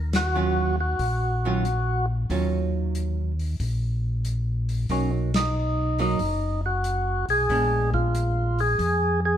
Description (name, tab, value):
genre	soul jazz organ trio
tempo	92 BPM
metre	4/4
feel	swing 68% on 8ths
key	Eb minor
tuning	A4 = 438 Hz
part	mellow tonewheel organ	bass	0.0-9.4 s	F#1 to F2	-25 LUFS	left 1 dB	chorus vibrato, slow rotary speaker
part	warm soul drum kit	drums	0.1-9.0 s	hi-hat, kick drum, ride cymbal, snare drum	-32 LUFS	left 1 dB	none
part	percussive tonewheel organ	melody	0.2-9.4 s	Db4 to Ab4	-25 LUFS	equal	slow rotary speaker
part	archtop guitar, miked and amplified	accompaniment	0.3-9.3 s	Eb3 to F4	-29 LUFS	right 6 dB	none
room	moderate stone room reverb, RT60 1.1 s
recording	band playing live in one room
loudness	-22 LUFS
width	side -10 dB against mid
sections	0.0-9.4 A section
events	band accent 0.0-0.3, 5.2-5.5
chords	0.0 Ebm9; 4.9 Bmaj7; 7.5 Bb7b9